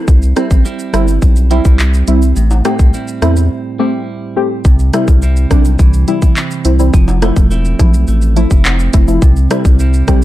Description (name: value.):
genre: dancehall.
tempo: 105 BPM.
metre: 4/4.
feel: straight.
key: C major.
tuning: A4 = 440 Hz.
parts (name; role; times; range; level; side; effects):
clean electric guitar; arpeggios; 0.0-10.2 s; A2 to E4; -20 LUFS; right 4 dB; none.
saturated sub bass; bass; 0.1-10.2 s; E1 to E2; -12 LUFS; equal; none.
island pop drum kit; drums; 0.1-10.2 s; handclaps, hi-hat, kick drum, rim click, shaker; -11 LUFS; equal; none.
egg shaker and timbales; percussion; 0.1-10.2 s; none; -30 LUFS; left 2 dB; none.
deep mellow chord stab; accompaniment; 0.4-10.2 s; F3 to G4; -17 LUFS; equal; chorus.
room: digital ambience.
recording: dark, warm production.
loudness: -9 LUFS.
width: side -15 dB against mid.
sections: 0.0-4.7 A section; 4.7-10.2 B section.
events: break 3.5-4.7.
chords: 0.1 C; 2.4 Am7; 4.7 C; 6.9 Fmaj7; 9.2 C.